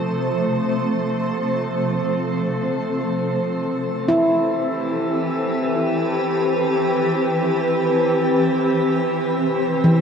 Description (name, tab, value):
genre	ambient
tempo	free time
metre	none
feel	none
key	C major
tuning	A4 = 440 Hz
part	granular cloud pad	sustained chords	0.0-10.0 s	C3 to C5	-19 LUFS	equal	built-in reverb
part	handpan	arpeggios	4.1-10.0 s	E3 to E4	-22 LUFS	equal	tape echo
room	wet shimmer reverb, RT60 7.2 s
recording	none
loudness	-18 LUFS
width	side -6 dB against mid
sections	0.0-10.0 A section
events	fade-in on ambient pad 0.0-10.0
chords	0.0 F/C; 2.6 Cmaj7; 9.2 C6